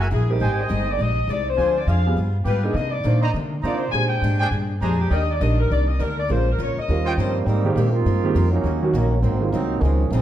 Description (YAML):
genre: jazz, big band swing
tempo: 204 BPM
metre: 4/4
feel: swing 60% on 8ths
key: Eb major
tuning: A4 = 439 Hz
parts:
  - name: warm trumpet section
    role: stabs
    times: 0.0-7.1 s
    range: D4 to Bb5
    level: -29 LUFS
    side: right 3 dB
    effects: none
  - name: upright bass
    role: bass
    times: 0.0-10.2 s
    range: Gb1 to D3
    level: -21 LUFS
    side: equal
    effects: none
  - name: mellow saxophone section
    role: melody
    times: 0.1-7.3 s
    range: G4 to Ab5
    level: -25 LUFS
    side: left 3 dB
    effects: none
  - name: picked steel-string acoustic guitar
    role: accompaniment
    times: 0.1-10.2 s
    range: Ab2 to C5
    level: -30 LUFS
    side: left 4 dB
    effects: none
  - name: clear upright piano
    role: accompaniment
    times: 0.3-9.5 s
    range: Eb3 to Eb5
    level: -27 LUFS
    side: right 4 dB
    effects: none
  - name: clear trombone section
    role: second line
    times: 7.2-10.2 s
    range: Eb3 to G4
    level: -24 LUFS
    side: right 4 dB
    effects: none
room: moderate recital hall reverb, RT60 1.4 s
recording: dark, warm production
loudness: -18 LUFS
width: side -11 dB against mid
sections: 0.0-7.5 A section; 7.5-10.2 B section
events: trombone section solo 7.5-10.2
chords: 0.4 Abmaj7; 1.6 Dm7b5; 2.2 G7b9; 2.8 Cm9; 3.9 Bb13; 5.1 Ebmaj7; 6.3 Bbm7; 6.9 Eb13; 7.5 Abmaj9; 8.6 Ebm7; 9.2 Ab9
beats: 0.10 | 0.40 0.69 0.99 1.28 | 1.58 1.87 2.17 2.46 | 2.76 3.05 3.35 3.64 | 3.94 4.23 4.52 4.82 | 5.11 5.41 5.70 6.00 | 6.29 6.58 6.88 7.17 | 7.47 7.76 8.05 8.35 | 8.64 8.94 9.23 9.52 | 9.82 10.11